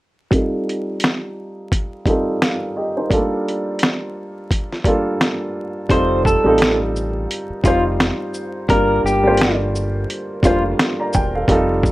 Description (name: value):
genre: lo-fi hip hop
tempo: 86 BPM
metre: 4/4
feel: swing 58% on 16ths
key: unclear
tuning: A4 = 440 Hz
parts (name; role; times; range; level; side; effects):
- warm upright piano; accompaniment; 0.3-11.9 s; G3 to Bb5; -20 LUFS; right 1 dB; low-pass filter, plate reverb
- dusty soul sampler-style drum kit; drums; 0.3-11.9 s; hi-hat, kick drum, shaker, snare drum; -18 LUFS; equal; overdrive, vintage 12-bit sampler grit
- electric guitar through a small old amp; melody; 5.9-10.6 s; F4 to C5; -19 LUFS; left 1 dB; low-pass filter, plate reverb
- deep dub fingered electric bass; bass; 5.9-11.9 s; E1 to A1; -23 LUFS; equal; none
room: moderate studio reverb, RT60 0.5 s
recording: vinyl crackle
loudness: -16 LUFS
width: side -18 dB against mid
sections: 0.3-5.9 A section; 5.9-11.9 B section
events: filter sweep on upright piano 0.3-5.9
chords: 0.3 F7; 3.1 Gm9; 5.9 F7; 8.7 Gm9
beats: | 0.32 1.01 1.71 2.41 | 3.11 3.81 4.50 5.20 | 5.90 6.60 7.29 7.99 | 8.69 9.39 10.09 10.78 | 11.48